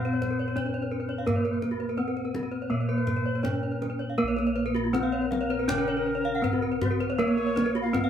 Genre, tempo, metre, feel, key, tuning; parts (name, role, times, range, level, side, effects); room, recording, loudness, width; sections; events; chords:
Balinese gamelan; 80-87 BPM; 4/4; straight; Bb pelog; A4 = 444 Hz
gamelan-type bronze metallophone; melody; 0.0-8.1 s; Bb3 to Db4; -29 LUFS; right 1 dB
xiao; second line; 0.0-8.1 s; Gb4 to F5; -34 LUFS; left 3 dB
gamelan-type bronze metallophone; accompaniment; 0.0-8.1 s; Db3 to Cb4+35c; -36 LUFS; left 5 dB
gamelan-type bronze metallophone; arpeggios; 0.0-8.1 s; Gb4 to F5; -35 LUFS; right 4 dB
gamelan-type bossed gongs; bass; 0.0-8.1 s; Bb1 to Bb4; -33 LUFS; equal
gamelan-type bronze metallophone; arpeggios; 0.1-8.0 s; F4 to Gb5; -35 LUFS; left 4 dB
kendang; percussion; 0.1-8.1 s; -33 LUFS; equal
moderate studio reverb, RT60 0.6 s; band playing live in one room; -25 LUFS; side -9 dB against mid
0.0-4.2 A section; 4.2-8.1 B section